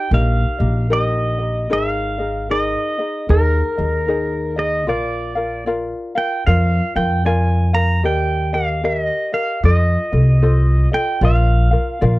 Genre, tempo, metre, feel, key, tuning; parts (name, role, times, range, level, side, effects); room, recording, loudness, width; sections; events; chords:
Hawaiian; 76 BPM; 4/4; swing 61% on 8ths; Eb major; A4 = 437 Hz
pedal steel guitar; melody; 0.0-12.2 s; Bb4 to Bb5; -21 LUFS; right 1 dB
ukulele; accompaniment; 0.0-12.2 s; Eb4 to F5; -23 LUFS; left 2 dB
upright bass; bass; 0.1-12.2 s; Ab1 to F2; -17 LUFS; equal
little or no reverb; dry, close 1970s-style studio recording; -15 LUFS; side -19 dB against mid
0.0-11.2 A section
0.0 Eb; 1.7 Absus2; 4.9 Bb; 8.1 Ebmaj7; 9.6 F7; 11.2 Bb